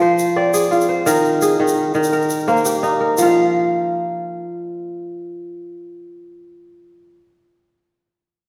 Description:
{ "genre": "west african traditional, West African string and xylophone music", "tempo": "114 BPM (dotted quarters)", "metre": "12/8", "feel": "straight", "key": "F dorian", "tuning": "A4 = 436 Hz", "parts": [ { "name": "kora", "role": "arpeggios", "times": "0.0-7.2 s", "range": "Eb3 to F5", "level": "-18 LUFS", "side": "equal", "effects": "none" }, { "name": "tube shaker", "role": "percussion", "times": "0.2-3.3 s", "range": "none", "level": "-31 LUFS", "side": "equal", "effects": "none" } ], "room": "wet concert hall reverb, RT60 1.9 s", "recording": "recorded in a church or concert hall", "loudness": "-17 LUFS", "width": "mono", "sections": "0.0-3.2 A section; 3.2-7.4 B section", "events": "none", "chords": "0.0 Fm; 1.1 Eb; 3.2 Fsus4" }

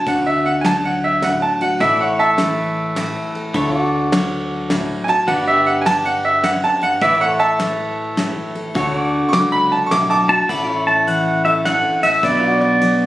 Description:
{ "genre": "honky-tonk and classic country", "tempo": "104 BPM", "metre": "3/4", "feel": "swing 65% on 8ths", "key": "D major", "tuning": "A4 = 438 Hz", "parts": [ { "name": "bright upright piano", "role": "second line", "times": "0.0-10.5 s", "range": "E5 to D6", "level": "-16 LUFS", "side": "right 1 dB", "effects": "none" }, { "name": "picked steel-string acoustic guitar", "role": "accompaniment", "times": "0.0-13.1 s", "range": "F#2 to A4", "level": "-22 LUFS", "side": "left 2 dB", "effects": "none" }, { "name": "pedal steel guitar", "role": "sustained chords", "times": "0.0-13.1 s", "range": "E4 to D5", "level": "-24 LUFS", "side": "equal", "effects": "none" }, { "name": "mellow fretless electric bass", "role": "bass", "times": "0.1-13.1 s", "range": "G1 to D2", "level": "-29 LUFS", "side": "equal", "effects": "none" }, { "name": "soft brush drum kit", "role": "drums", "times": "0.1-13.0 s", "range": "crash cymbal, kick drum, ride cymbal, snare drum", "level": "-26 LUFS", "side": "equal", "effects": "none" }, { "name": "pedal steel guitar", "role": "melody", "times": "10.3-13.1 s", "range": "D5 to B5", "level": "-15 LUFS", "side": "equal", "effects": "plate reverb" } ], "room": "moderate studio ambience, RT60 0.5 s", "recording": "recorded on a phone in the room, studio reverb, compression", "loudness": "-15 LUFS", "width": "side -15 dB against mid", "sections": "0.0-10.5 A section; 10.5-13.1 B section", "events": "upright piano solo 0.0-10.5", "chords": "0.0 D; 1.8 A; 3.5 D; 5.3 G; 7.0 A; 8.8 D; 10.5 A; 12.2 Bm" }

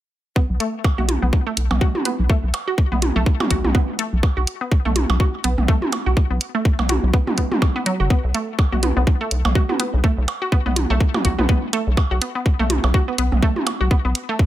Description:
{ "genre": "minimal techno", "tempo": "124 BPM", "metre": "4/4", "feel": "swing 57% on 16ths", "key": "unclear", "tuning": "A4 = 445 Hz", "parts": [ { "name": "resonant blip pluck", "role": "riff", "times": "0.4-14.3 s", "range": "F#3 to F#4", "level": "-25 LUFS", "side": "equal", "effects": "chorus, sidechain pumping, ping-pong delay" }, { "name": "electronic kick drum", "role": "drums", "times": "0.4-14.5 s", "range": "none", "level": "-17 LUFS", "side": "equal", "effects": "overdrive, small room ambience" }, { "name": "rubbery square bass", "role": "bass", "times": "0.5-14.1 s", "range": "F#1 to B1", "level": "-19 LUFS", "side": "equal", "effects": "sidechain pumping" }, { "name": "electronic hi-hat", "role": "drums", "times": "0.6-14.3 s", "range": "none", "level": "-22 LUFS", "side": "right 1 dB", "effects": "overdrive, small room ambience" }, { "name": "electronic percussion blips and toms", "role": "percussion", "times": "0.8-13.8 s", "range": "none", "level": "-24 LUFS", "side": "right 2 dB", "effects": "overdrive, small room ambience, dub echo" } ], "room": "little or no reverb", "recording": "none", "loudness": "-17 LUFS", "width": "side -13 dB against mid", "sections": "0.4-14.5 A section", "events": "none", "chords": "none" }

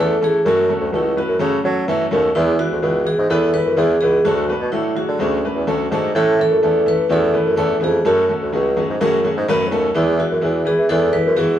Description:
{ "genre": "uptempo 1960s-style soul", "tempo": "126 BPM", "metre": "4/4", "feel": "straight", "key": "unclear", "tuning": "A4 = 440 Hz", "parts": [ { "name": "vibraphone with soft mallets", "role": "melody", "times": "0.0-11.6 s", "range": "C#4 to B4", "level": "-19 LUFS", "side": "equal", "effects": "none" }, { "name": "clear upright piano", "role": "accompaniment", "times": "0.0-11.5 s", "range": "E3 to B4", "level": "-21 LUFS", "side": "left 1 dB", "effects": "none" }, { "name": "mellow bassoon", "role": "bass", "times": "0.0-11.5 s", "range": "C#2 to F#3", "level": "-18 LUFS", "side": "right 1 dB", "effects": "none" } ], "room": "wet studio reverb, RT60 0.8 s", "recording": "band playing live in one room", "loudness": "-15 LUFS", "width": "side -11 dB against mid", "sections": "0.0-11.6 A section", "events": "none", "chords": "0.4 F#m; 2.3 E; 4.3 D; 6.2 A; 8.1 F#m; 9.9 E" }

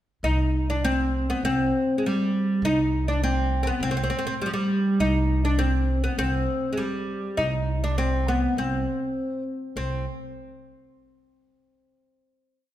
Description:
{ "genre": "Arabic maqam ensemble", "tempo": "101 BPM", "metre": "4/4", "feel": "straight", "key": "C maqam nahawand", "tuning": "A4 = 442 Hz", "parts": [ { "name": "oud", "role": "melody", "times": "0.2-10.0 s", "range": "F3 to Eb4", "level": "-24 LUFS", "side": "equal", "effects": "none" }, { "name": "upright bass", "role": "bass", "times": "0.2-10.0 s", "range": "C2", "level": "-26 LUFS", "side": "right 1 dB", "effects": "none" } ], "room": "moderate scoring stage reverb, RT60 1.6 s", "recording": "minimal, uncompressed stereo recording", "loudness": "-22 LUFS", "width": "side -12 dB against mid", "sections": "0.2-9.8 A section; 9.8-12.1 final note", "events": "none", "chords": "none" }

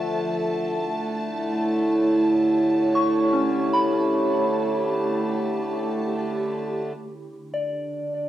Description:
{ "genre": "ambient", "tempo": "75 BPM", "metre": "4/4", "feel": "straight", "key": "unclear", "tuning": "A4 = 440 Hz", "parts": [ { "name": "warbly tape-like pad", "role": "sustained chords", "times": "0.0-8.3 s", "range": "D3 to F5", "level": "-23 LUFS", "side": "right 1 dB", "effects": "chorus, built-in reverb, cassette tape, plate reverb" }, { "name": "soft synth bell", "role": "arpeggios", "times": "0.0-8.3 s", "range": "C#4 to C#6", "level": "-27 LUFS", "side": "equal", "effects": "chorus, cassette tape, analog delay" }, { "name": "pedal harmonium", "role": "drone", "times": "0.0-6.9 s", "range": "D3 to A3", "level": "-29 LUFS", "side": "equal", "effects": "cassette tape" }, { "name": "warm studio violin section", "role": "texture", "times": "0.0-6.8 s", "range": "A5", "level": "-35 LUFS", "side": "equal", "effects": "cassette tape, plate reverb" } ], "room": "wet studio reverb, RT60 0.6 s", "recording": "home recording on cassette", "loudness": "-21 LUFS", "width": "side -12 dB against mid", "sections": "0.0-6.8 A section; 6.8-8.3 B section", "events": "filter sweep on ambient pad 0.0-6.8, 6.8-8.3", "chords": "0.5 A7; 6.8 Dm" }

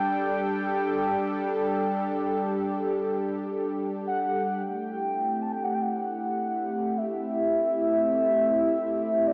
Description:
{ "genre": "ambient", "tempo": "52 BPM", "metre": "4/4", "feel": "straight", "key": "unclear", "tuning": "A4 = 440 Hz", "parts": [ { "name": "warm velvety synth lead", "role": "melody", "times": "0.0-9.3 s", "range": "D5 to A5", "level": "-30 LUFS", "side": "equal", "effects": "chorus, cassette tape, tape echo" }, { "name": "warm analog pad", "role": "sustained chords", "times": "0.0-9.3 s", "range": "G3 to A4", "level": "-30 LUFS", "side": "equal", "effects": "chorus, cassette tape" } ], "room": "wet spring reverb, RT60 2.3 s", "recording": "home recording on cassette", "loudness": "-27 LUFS", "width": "mono", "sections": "0.0-4.7 A section; 4.7-9.3 B section", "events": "none", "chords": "0.0 G5; 4.7 Am7" }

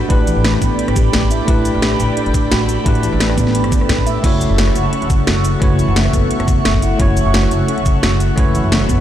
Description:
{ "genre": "liquid drum and bass", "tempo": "174 BPM", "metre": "4/4", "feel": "swing 53% on 16ths", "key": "unclear", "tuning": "A4 = 440 Hz", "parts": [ { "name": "bell-like tine electric piano", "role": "accompaniment", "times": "0.0-9.0 s", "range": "A3 to C#5", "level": "-21 LUFS", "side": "equal", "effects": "fast stereo tremolo, ping-pong delay" }, { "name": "airy breathy pad", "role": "sustained chords", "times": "0.0-9.0 s", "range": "A4 to C#6", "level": "-22 LUFS", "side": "left 1 dB", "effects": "chorus, phaser" }, { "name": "harp-like synth pluck", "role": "arpeggios", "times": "0.1-9.0 s", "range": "E3 to E5", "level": "-23 LUFS", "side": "right 4 dB", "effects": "chorus, dub echo" }, { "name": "upright bass", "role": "bass", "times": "0.1-9.0 s", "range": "F#1 to A2", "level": "-17 LUFS", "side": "equal", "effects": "none" }, { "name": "drum and bass drum kit", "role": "drums", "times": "0.1-9.0 s", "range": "cabasa, crash cymbal, hi-hat, rim click, snare drum", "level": "-20 LUFS", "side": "equal", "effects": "none" }, { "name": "electronic kick drum", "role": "drums", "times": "0.1-9.0 s", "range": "none", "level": "-16 LUFS", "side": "equal", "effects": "none" } ], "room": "digital ambience", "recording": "played on a big sound system in a bare room, large studio reverb", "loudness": "-12 LUFS", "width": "side -11 dB against mid", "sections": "0.0-9.0 A section", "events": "none", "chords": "0.0 A9sus4; 4.2 F#m7" }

